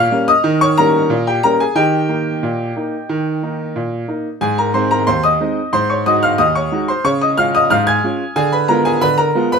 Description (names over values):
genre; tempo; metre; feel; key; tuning
ragtime piano; 91 BPM; 2/4; straight; unclear; A4 = 440 Hz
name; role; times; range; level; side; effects
clear baby grand piano; solo; 0.0-9.6 s; Eb2 to Ab6; -13 LUFS; equal; none
room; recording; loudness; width
moderate studio reverb, RT60 0.8 s; minimal, uncompressed stereo recording; -13 LUFS; side -5 dB against mid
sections
0.0-9.6 A section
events
none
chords
0.0 Eb7; 1.8 Eb; 4.4 Ab; 5.7 Ab7; 7.0 Db; 8.4 Ddim7